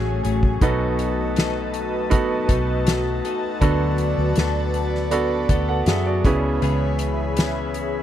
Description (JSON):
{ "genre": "pop ballad", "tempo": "80 BPM", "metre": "4/4", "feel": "straight", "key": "unclear", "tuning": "A4 = 440 Hz", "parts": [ { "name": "clear concert grand piano", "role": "accompaniment", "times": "0.0-8.0 s", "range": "B2 to F#5", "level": "-25 LUFS", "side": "right 4 dB", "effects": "none" }, { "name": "airy breathy pad", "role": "sustained chords", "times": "0.0-8.0 s", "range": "A3 to B5", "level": "-26 LUFS", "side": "left 1 dB", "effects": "chorus" }, { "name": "direct-recorded clean electric guitar", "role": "arpeggios", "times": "0.0-8.0 s", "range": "B2 to A4", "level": "-29 LUFS", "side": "left 14 dB", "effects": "none" }, { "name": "vintage muted fingered electric bass", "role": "bass", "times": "0.0-8.0 s", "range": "A1 to F#2", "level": "-25 LUFS", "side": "equal", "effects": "none" }, { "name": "soft-mallet drum kit", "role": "drums", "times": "0.2-7.9 s", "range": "hi-hat, kick drum, snare drum", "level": "-22 LUFS", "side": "equal", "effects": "none" } ], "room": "little or no reverb", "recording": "dry, close 1970s-style studio recording", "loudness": "-19 LUFS", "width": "side -11 dB against mid", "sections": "0.0-8.0 A section", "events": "none", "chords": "0.0 F#madd9; 0.6 B7; 3.6 D6; 6.2 C#m7", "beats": "| 0.62 1.37 2.12 2.87 | 3.62 4.37 5.12 5.87 | 6.62 7.37" }